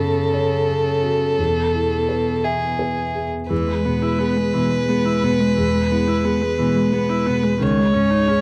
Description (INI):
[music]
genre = neoclassical piano and strings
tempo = 58 BPM (dotted quarters)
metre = 6/8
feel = rubato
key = E major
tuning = A4 = 440 Hz
[part]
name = rich violin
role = melody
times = 0.0-8.4 s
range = G#4 to C#5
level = -24 LUFS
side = equal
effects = none
[part]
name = rich cello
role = second line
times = 0.0-8.4 s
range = B2 to G#3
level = -26 LUFS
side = equal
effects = none
[part]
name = felt-muted upright piano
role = accompaniment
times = 0.0-8.4 s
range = C#2 to E5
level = -25 LUFS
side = equal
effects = none
[part]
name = dark viola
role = accompaniment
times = 3.5-8.4 s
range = D#3 to E4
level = -26 LUFS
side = equal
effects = none
[sound]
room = small room reverb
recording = dry, close 1970s-style studio recording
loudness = -19 LUFS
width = mono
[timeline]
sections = 0.0-3.5 A section; 3.5-8.4 B section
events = none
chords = 0.0 F#m; 1.4 E; 7.6 C#sus2